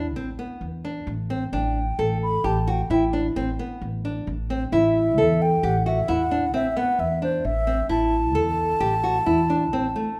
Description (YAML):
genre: contemporary instrumental, chamber music in an uneven meter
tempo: 132 BPM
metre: 7/4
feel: straight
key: A dorian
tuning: A4 = 440 Hz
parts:
  - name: nylon-string guitar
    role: arpeggios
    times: 0.0-10.2 s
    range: A3 to A4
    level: -26 LUFS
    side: equal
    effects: none
  - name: upright bass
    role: bass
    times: 0.0-9.9 s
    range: A1 to E2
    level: -29 LUFS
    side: equal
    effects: none
  - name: bright baroque flute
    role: melody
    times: 1.5-10.2 s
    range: C5 to B5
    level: -27 LUFS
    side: equal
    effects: none
room: moderate recital hall reverb, RT60 1.3 s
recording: none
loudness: -23 LUFS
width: mono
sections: 0.0-10.2 A section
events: none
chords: 0.0 A5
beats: 0.16 0.62 1.08 | 1.53 1.99 2.45 2.91 3.36 3.82 4.27 | 4.73 5.18 5.63 6.08 6.54 6.99 7.44 | 7.90 8.35 8.81 9.27 9.73 10.19